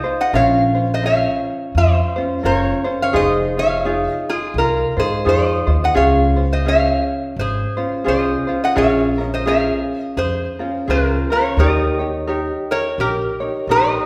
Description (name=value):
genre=Hawaiian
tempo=85 BPM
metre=4/4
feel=swing 60% on 8ths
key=unclear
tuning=A4 = 436 Hz
part: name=lap resonator guitar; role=melody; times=0.0-14.1 s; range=F4 to Gb5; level=-21 LUFS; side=equal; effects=none
part: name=ukulele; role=accompaniment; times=0.0-14.1 s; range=Db4 to Db5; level=-23 LUFS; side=equal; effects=none
part: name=upright bass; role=bass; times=0.3-14.0 s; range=F1 to Ab2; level=-23 LUFS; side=equal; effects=none
room=wet recital hall reverb, RT60 1.4 s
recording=recorded in a church or concert hall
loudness=-18 LUFS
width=mono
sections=0.0-14.1 A section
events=none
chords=0.3 Bbmadd9; 3.1 Fm7; 6.0 Dbmaj7; 8.8 Bbm7; 11.6 Eb7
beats=| 0.33 1.03 1.74 2.44 | 3.15 3.85 4.56 5.26 | 5.96 6.67 7.37 8.07 | 8.78 9.48 10.18 10.88 | 11.59 12.29 12.99 13.69